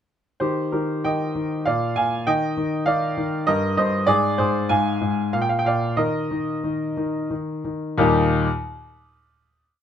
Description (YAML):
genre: classical-period piano sonatina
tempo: 88-100 BPM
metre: 3/4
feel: rubato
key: Eb major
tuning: A4 = 438 Hz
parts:
  - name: clear concert grand piano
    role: solo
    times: 0.4-8.5 s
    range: Eb2 to Ab5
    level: -20 LUFS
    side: equal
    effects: none
room: light reverb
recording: close, detailed microphones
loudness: -20 LUFS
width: side -9 dB against mid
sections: 0.4-8.0 A section; 8.0-9.8 final chord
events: slowing down 3.2-8.0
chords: 0.4 Eb; 1.7 Bb7; 2.3 Eb; 3.5 Eb/G; 4.1 N.C.; 4.7 Fm/Ab; 5.3 Bb; 6.0 Eb5; 8.0 Eb